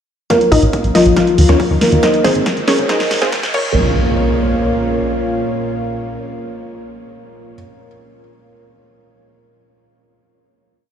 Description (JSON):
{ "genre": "uplifting trance", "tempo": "139 BPM", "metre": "4/4", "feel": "straight", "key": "Bb minor", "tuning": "A4 = 441 Hz", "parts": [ { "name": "wide unison pluck", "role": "melody", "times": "0.3-7.5 s", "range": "C4 to F5", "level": "-18 LUFS", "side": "left 1 dB", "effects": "sidechain pumping, ping-pong delay" }, { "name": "felt-muted upright piano", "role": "second line", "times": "0.3-7.5 s", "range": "F3 to Bb4", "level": "-18 LUFS", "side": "left 1 dB", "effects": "ping-pong delay" }, { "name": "lush unison pad", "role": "sustained chords", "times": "0.3-7.5 s", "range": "Bb2 to Bb4", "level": "-22 LUFS", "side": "right 1 dB", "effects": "chorus, sidechain pumping" }, { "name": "electronic kick drum", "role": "drums", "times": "0.3-3.6 s", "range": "none", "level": "-23 LUFS", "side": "right 1 dB", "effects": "high-pass filter on kick, high-pass filter on room" }, { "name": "punchy analog drum machine", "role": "drums", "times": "0.3-3.6 s", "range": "crash cymbal, hi-hat, snare drum", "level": "-22 LUFS", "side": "equal", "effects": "sidechain pumping on hats, sidechain pumping on cymbals" }, { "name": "riser and impact", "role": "sound effects", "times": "1.9-7.6 s", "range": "none", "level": "-24 LUFS", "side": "equal", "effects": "none" }, { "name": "tight sequencer bass", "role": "bass", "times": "0.5-5.0 s", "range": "F1 to Eb2", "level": "-16 LUFS", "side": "equal", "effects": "sidechain pumping" } ], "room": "moderate huge ambient reverb, RT60 7.0 s", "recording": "played on a big sound system in a bare room, stone room reverb, high-pass filter", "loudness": "-12 LUFS", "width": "side -8 dB against mid", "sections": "0.3-3.8 build; 3.8-7.2 final hit", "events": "build-up 0.3-3.8; drum fill 0.3-3.8; filter sweep 0.3-3.8; riser 1.9-3.8", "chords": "0.3 Bbm; 1.2 Ebsus2; 2.0 Abadd9; 2.9 Fm7; 3.5 Bbm" }